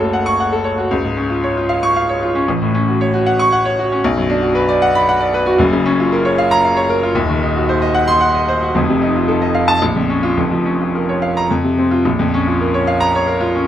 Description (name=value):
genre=classical, virtuoso piano study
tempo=114 BPM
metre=3/4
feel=rubato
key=F# minor, Bb minor from 5.6 s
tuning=A4 = 440 Hz
part: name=bright grand piano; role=solo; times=0.0-13.7 s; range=Eb1 to C#6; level=-13 LUFS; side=equal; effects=none
room=light reverb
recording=close, detailed microphones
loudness=-13 LUFS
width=side -11 dB against mid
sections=0.0-12.1 A section; 12.1-13.7 B section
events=none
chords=0.0 F#m; 0.9 C#; 2.5 F#m/A; 4.0 Bm; 5.6 Gbmaj7; 7.1 Cdim/Eb; 8.7 F7; 9.8 Bbm; 10.4 Bbm/F; 11.5 F5; 12.1 Bbm